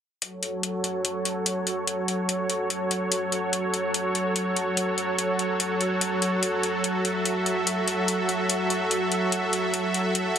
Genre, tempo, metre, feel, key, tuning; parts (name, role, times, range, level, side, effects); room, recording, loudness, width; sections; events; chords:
heavy wobble dubstep; 145 BPM; 4/4; swing 53% on 16ths, half-time; F# minor; A4 = 441 Hz
supersaw pad; sustained chords; 0.2-10.4 s; F#3 to E5; -24 LUFS; right 1 dB; low-pass filter
electronic hi-hat; drums; 0.2-10.4 s; -27 LUFS; left 3 dB; overdrive
moderate plate reverb, RT60 1.0 s; dense, heavily limited modern master; -23 LUFS; side -8 dB against mid
0.2-10.4 A section
filter sweep on supersaw synth 0.2-10.4
0.2 F#m